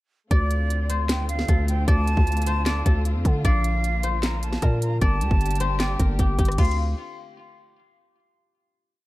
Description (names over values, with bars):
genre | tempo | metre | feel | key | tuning
hip hop, trap | 153 BPM | 4/4 | half-time | D minor | A4 = 435 Hz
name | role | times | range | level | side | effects
guzheng | melody | 0.3-6.8 s | F4 to D5 | -30 LUFS | left 4 dB | low-pass filter, digital delay
silver concert flute | second line | 0.3-6.8 s | D5 to Bb5 | -32 LUFS | right 4 dB | digital delay
warm symphonic string section | sustained chords | 0.3-6.8 s | D3 to G4 | -34 LUFS | left 1 dB | none
growling 808-style bass | bass | 0.3-6.9 s | G1 to D3 | -23 LUFS | equal | none
trap drum kit | drums | 0.3-6.8 s | crash cymbal, handclaps, hi-hat, kick drum, rim click, snare drum | -22 LUFS | equal | none
room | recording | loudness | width
little or no reverb | none | -20 LUFS | side -18 dB against mid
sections
0.3-6.6 hook; 6.6-8.2 final chord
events
none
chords
0.3 Dm7; 3.4 Bb; 5.0 Gm; 6.6 Dm7